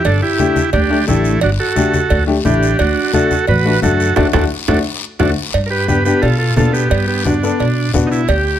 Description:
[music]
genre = latin, cumbia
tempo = 175 BPM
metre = 4/4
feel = straight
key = G major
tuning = A4 = 439 Hz
[part]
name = combo organ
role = melody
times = 0.0-8.6 s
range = A3 to B4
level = -17 LUFS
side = right 3 dB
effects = none
[part]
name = upright bass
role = bass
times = 0.0-8.6 s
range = G1 to B2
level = -17 LUFS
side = equal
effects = none
[part]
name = guiro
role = percussion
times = 0.0-8.6 s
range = none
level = -29 LUFS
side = left 7 dB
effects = none
[part]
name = cowbell and timbales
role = percussion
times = 0.1-8.5 s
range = none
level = -22 LUFS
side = right 7 dB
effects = none
[part]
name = clear upright piano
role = accompaniment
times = 0.4-8.2 s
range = A3 to A4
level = -18 LUFS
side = left 4 dB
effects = none
[part]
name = congas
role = percussion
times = 0.4-8.5 s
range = none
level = -21 LUFS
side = left 1 dB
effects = none
[sound]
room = moderate studio reverb, RT60 0.7 s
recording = none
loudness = -12 LUFS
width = side -10 dB against mid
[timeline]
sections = 0.0-5.5 A section; 5.5-8.6 B section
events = band accent 4.2-5.5; drum fill 4.5-5.5; transistor combo organ solo 5.5-8.6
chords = 0.1 Gsus2; 2.8 D; 5.5 G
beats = | 0.05 0.39 0.74 1.08 | 1.42 1.76 2.11 2.45 | 2.79 3.14 3.48 3.82 | 4.17 4.51 4.85 5.20 | 5.54 5.88 6.22 6.57 | 6.91 7.25 7.60 7.94 | 8.28

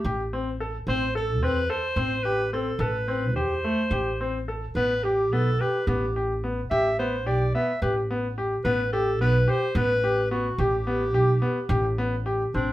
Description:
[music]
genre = contemporary instrumental, chamber music in an uneven meter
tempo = 217 BPM (eighths)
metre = 7/8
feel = straight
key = A minor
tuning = A4 = 440 Hz
[part]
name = clear clarinet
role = melody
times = 0.0-12.7 s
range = D4 to E5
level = -27 LUFS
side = equal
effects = none
[part]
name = upright bass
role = bass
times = 0.0-12.7 s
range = A1 to E2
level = -27 LUFS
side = equal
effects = none
[part]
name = clear concert grand piano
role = arpeggios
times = 0.1-12.7 s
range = A3 to A4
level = -27 LUFS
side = left 1 dB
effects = none
[sound]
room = wet studio reverb, RT60 0.6 s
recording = heard from further back in the room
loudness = -22 LUFS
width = side -15 dB against mid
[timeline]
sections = 0.0-12.5 A section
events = none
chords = 0.0 Am7; 4.8 A7sus2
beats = 0.05 0.33 0.60 | 0.88 1.15 1.43 1.70 1.98 2.25 2.53 | 2.81 3.09 3.37 3.65 3.93 4.21 4.49 | 4.77 5.05 5.33 5.61 5.89 6.17 6.44 | 6.72 7.00 7.27 7.55 7.82 8.10 8.38 | 8.65 8.93 9.20 9.48 9.76 10.03 10.31 | 10.59 10.86 11.14 11.42 11.70 11.98 12.26 | 12.54

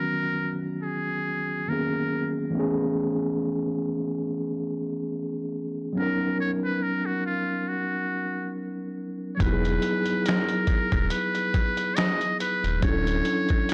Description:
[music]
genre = lo-fi hip hop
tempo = 70 BPM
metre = 4/4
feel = swing 55% on 16ths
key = unclear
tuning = A4 = 440 Hz
[part]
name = trumpet with metal mute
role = melody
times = 0.0-13.7 s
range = F4 to D#5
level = -31 LUFS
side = equal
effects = low-pass filter
[part]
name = mellow tine electric piano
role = accompaniment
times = 0.0-13.7 s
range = D#3 to A#4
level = -30 LUFS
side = equal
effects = cassette tape, low-pass filter
[part]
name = sub bass with octave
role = bass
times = 9.4-13.2 s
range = D1 to E1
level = -30 LUFS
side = equal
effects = transformer saturation
[part]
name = lo-fi sampler-style drum kit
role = drums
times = 9.4-13.7 s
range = finger snaps, hi-hat, kick drum, snare drum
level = -29 LUFS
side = equal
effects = overdrive, vintage 12-bit sampler grit
[sound]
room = light reverb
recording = dry, gritty hardware recording, transformer saturation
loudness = -27 LUFS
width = mono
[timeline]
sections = 0.0-9.4 A section; 9.4-13.7 B section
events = none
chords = 0.0 Bmaj9; 2.5 Amaj9; 6.0 Bmaj9; 9.4 Emaj9; 12.8 Dmaj9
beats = 0.83 1.69 | 2.54 3.40 4.26 5.12 | 5.97 6.83 7.69 8.54 | 9.40 10.26 11.12 11.97 | 12.83 13.69

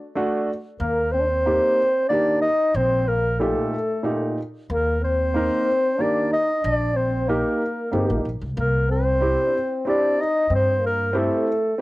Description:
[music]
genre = klezmer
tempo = 93 BPM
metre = 3/4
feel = straight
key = unclear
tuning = A4 = 440 Hz
[part]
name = mellow clarinet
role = melody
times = 0.0-11.8 s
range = A4 to Eb5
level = -22 LUFS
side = equal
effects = cassette tape, plate reverb
[part]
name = breathy trombone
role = second line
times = 0.0-11.8 s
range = A3 to Eb4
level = -27 LUFS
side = left 2 dB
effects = cassette tape, plate reverb
[part]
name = warm upright piano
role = accompaniment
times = 0.2-11.8 s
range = Bb2 to Bb4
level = -24 LUFS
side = right 1 dB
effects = cassette tape, plate reverb
[part]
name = upright bass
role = bass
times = 0.8-11.3 s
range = G1 to G2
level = -24 LUFS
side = equal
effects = none
[sound]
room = moderate small room reverb, RT60 0.5 s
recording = home recording on cassette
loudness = -19 LUFS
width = side -19 dB against mid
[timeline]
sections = 0.8-11.8 A section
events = none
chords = 0.0 D; 0.8 Eb; 8.6 C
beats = 0.16 | 0.81 1.46 2.11 | 2.76 3.41 4.06 | 4.70 5.35 6.00 | 6.64 7.29 7.93 | 8.58 9.22 9.86 | 10.51 11.15 11.79

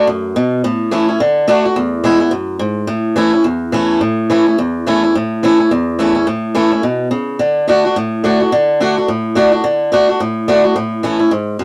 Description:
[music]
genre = rock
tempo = 214 BPM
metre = 4/4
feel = swing 59% on 8ths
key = A major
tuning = A4 = 443 Hz
[part]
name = picked swing-style acoustic guitar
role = solo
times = 0.0-11.6 s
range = E2 to F#4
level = -14 LUFS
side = equal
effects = none
[sound]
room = moderate booth ambience, RT60 0.2 s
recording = rough rehearsal-room recording, warm saturation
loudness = -14 LUFS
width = mono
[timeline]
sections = 0.0-2.9 A section; 2.9-11.6 B section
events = none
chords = 0.0 N.C.; 0.6 A; 1.2 D; 1.8 E; 2.9 A; 7.4 D; 10.8 A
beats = 0.08 0.36 | 0.64 0.92 1.20 1.48 | 1.76 2.04 2.33 2.61 | 2.89 3.17 3.45 3.73 | 4.01 4.29 4.58 4.86 | 5.14 5.42 5.70 5.98 | 6.26 6.55 6.83 7.11 | 7.39 7.67 7.95 8.23 | 8.51 8.79 9.07 9.35 | 9.63 9.91 10.19 10.47 | 10.75 11.03 11.31 11.59

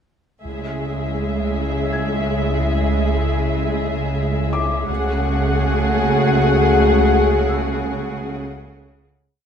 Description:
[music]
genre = cinematic, suspense film score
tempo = 81 BPM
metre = 3/4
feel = straight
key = C# phrygian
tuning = A4 = 440 Hz
[part]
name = muted symphonic violin section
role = melody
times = 0.4-9.1 s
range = E5 to F#5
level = -26 LUFS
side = left 2 dB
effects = none
[part]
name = muted symphonic viola section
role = accompaniment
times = 0.4-9.1 s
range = G#3 to A3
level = -25 LUFS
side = right 2 dB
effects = none
[part]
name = mellow French horn section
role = sustained chords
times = 0.4-9.0 s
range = G#3 to G#4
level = -25 LUFS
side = left 6 dB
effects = none
[part]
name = muted studio double bass section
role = bass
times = 0.4-9.1 s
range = C#2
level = -25 LUFS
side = right 3 dB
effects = none
[part]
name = sub bass with octave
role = drone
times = 0.4-9.3 s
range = C#2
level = -24 LUFS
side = left 1 dB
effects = none
[part]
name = muted symphonic violin section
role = second line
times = 0.5-9.1 s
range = G#4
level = -26 LUFS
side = left 1 dB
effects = none
[part]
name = muted chamber cello section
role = bass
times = 0.5-9.1 s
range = C#3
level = -26 LUFS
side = right 2 dB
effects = none
[part]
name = felt-muted upright piano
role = texture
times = 1.9-9.4 s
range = D6 to G#6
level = -31 LUFS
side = left 3 dB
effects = none
[part]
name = muted symphonic violin section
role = texture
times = 4.9-8.9 s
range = C#6 to F#6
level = -31 LUFS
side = left 4 dB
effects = none
[sound]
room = moderate scoring stage reverb, RT60 2.0 s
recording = minimal, uncompressed stereo recording, lossy compression artefacts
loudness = -17 LUFS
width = side -7 dB against mid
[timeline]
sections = 0.4-9.3 A section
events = fade-out 7.1-9.3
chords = 0.4 C#m; 4.9 F#madd9/C#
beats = | 0.45 1.19 1.93 | 2.67 3.41 4.15 | 4.89 5.63 6.37 | 7.11 7.85 8.59

